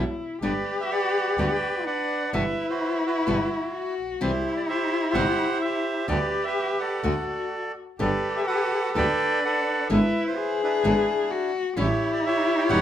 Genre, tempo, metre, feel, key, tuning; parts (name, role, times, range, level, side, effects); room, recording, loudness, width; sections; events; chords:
tango; 127 BPM; 4/4; rubato; G major; A4 = 443 Hz
dark cello; second line; 0.0-12.8 s; D4 to G#4; -27 LUFS; left 4 dB
nylon-string guitar; accompaniment; 0.0-12.8 s; B2 to G#4; -27 LUFS; left 2 dB
clear double bass; bass; 0.0-12.8 s; E1 to D2; -30 LUFS; right 2 dB
bandoneon; melody; 0.4-12.8 s; D4 to G5; -26 LUFS; right 2 dB
moderate club reverb, RT60 0.7 s; minimal, uncompressed stereo recording; -22 LUFS; side -10 dB against mid
0.4-12.8 A section
0.4 G; 2.3 Emadd9/G; 4.2 C; 6.1 G/D; 7.0 D; 8.0 Gadd9; 9.9 E7/G#; 11.8 A7